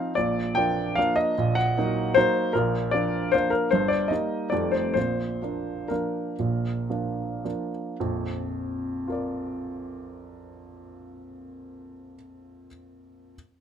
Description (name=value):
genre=classical, piano waltz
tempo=106-162 BPM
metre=3/4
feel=rubato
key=Bb major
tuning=A4 = 441 Hz
part: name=warm upright piano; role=solo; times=0.0-13.4 s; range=F1 to G5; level=-23 LUFS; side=equal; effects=none
room=light reverb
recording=close, detailed microphones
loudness=-23 LUFS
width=side -8 dB against mid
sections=0.0-8.0 A section; 8.0-11.2 B section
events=slowing down 4.3-8.0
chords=0.2 Bb; 1.4 Ebm/Bb; 2.5 Bb; 3.7 Eb/G; 4.5 F9; 5.0 Bb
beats=| 0.17 0.56 0.97 | 1.37 1.76 2.16 | 2.55 2.93 3.33 | 3.72 4.10 4.52 | 4.96 5.42 5.91 | 6.39 6.89 7.44 | 8.00 8.53 9.07 | 9.61 10.13 10.66